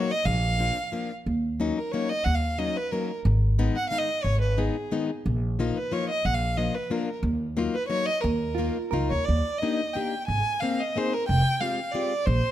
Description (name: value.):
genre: musette waltz.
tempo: 181 BPM.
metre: 3/4.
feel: swing 53% on 8ths, rubato.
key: Eb minor, Eb major from 9.3 s.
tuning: A4 = 441 Hz.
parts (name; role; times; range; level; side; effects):
rich violin; melody; 0.0-12.5 s; Ab4 to Ab5; -28 LUFS; right 1 dB; none.
picked plugged-in steel-string acoustic guitar; accompaniment; 0.0-12.1 s; Eb3 to Ab4; -30 LUFS; left 4 dB; none.
upright bass; bass; 0.3-12.4 s; F1 to Eb2; -25 LUFS; equal; none.
vintage hollow-body jazz guitar; second line; 8.5-9.2 s; F4 to Bb4; -32 LUFS; right 5 dB; none.
room: light reverb.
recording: close, detailed microphones.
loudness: -24 LUFS.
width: side -12 dB against mid.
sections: 0.0-9.3 A section; 9.3-12.5 B section.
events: none.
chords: 0.3 Bb; 1.3 Ebm7; 3.3 Abm; 5.3 Bbsus4; 6.3 Bb; 7.2 Ebmadd9; 9.3 Ebmaj7; 10.3 Abadd9; 11.3 Fmadd9.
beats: | 0.27 0.59 0.93 | 1.26 1.60 1.94 | 2.27 2.60 2.93 | 3.26 3.58 3.91 | 4.24 4.57 4.91 | 5.25 5.59 5.93 | 6.26 6.58 6.91 | 7.24 7.57 7.91 | 8.24 8.58 8.93 | 9.28 9.62 9.96 | 10.29 10.62 10.96 | 11.29 11.62 11.95 | 12.28.